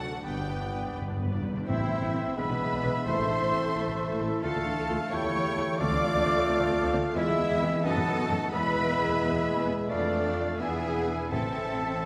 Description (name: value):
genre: classical, dramatic, fast romantic movement for symphony orchestra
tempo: 87 BPM (dotted quarters)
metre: 6/8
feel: straight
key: A minor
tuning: A4 = 440 Hz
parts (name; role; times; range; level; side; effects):
- warm studio violin section; melody; 0.0-12.1 s; D5 to G5; -43 LUFS; equal; none
- dark clarinet; second line; 0.0-12.1 s; G#3 to F4; -39 LUFS; equal; none
- silver concert flute; second line; 0.0-12.1 s; D5 to D6; -38 LUFS; equal; none
- warm studio violin section; second line; 0.0-12.1 s; F#4 to D6; -41 LUFS; equal; none
- rich symphonic viola section; accompaniment; 0.0-12.1 s; A3 to D5; -40 LUFS; equal; none
- mellow French horn section; sustained chords; 0.0-12.1 s; G#3 to G4; -39 LUFS; equal; none
- concert harp; arpeggios; 0.0-12.1 s; E2 to A5; -38 LUFS; equal; none
- clear symphonic double bass section; bass; 0.0-12.1 s; G1 to F#2; -38 LUFS; equal; none
- rich symphonic cello section; bass; 0.0-12.1 s; G2 to D5; -35 LUFS; equal; none
- clear bassoon; accompaniment; 0.2-12.1 s; G#3 to C4; -38 LUFS; equal; none
- timpani; percussion; 0.3-3.7, 11.3-12.0 s; G2 to A2; -37 LUFS; equal; none
- clear oboe; second line; 1.7-12.1 s; D#5 to G5; -40 LUFS; equal; none
room: wet concert hall reverb, RT60 2.1 s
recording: none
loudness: -28 LUFS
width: mono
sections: 0.0-1.7 A section; 1.7-12.1 B section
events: timpani fill 0.2-1.7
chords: 0.2 G; 1.7 Am; 2.4 E7/B; 3.1 Am; 4.4 Dm; 5.1 A7/E; 5.8 Dm7; 7.2 E; 7.9 B7/F#; 8.5 E; 9.9 Dm/F; 10.6 E; 11.3 Am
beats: | 0.24 0.96 | 1.68 2.38 | 3.07 3.76 | 4.44 5.12 | 5.80 6.48 | 7.16 7.85 | 8.53 9.21 | 9.89 10.60 | 11.30 12.01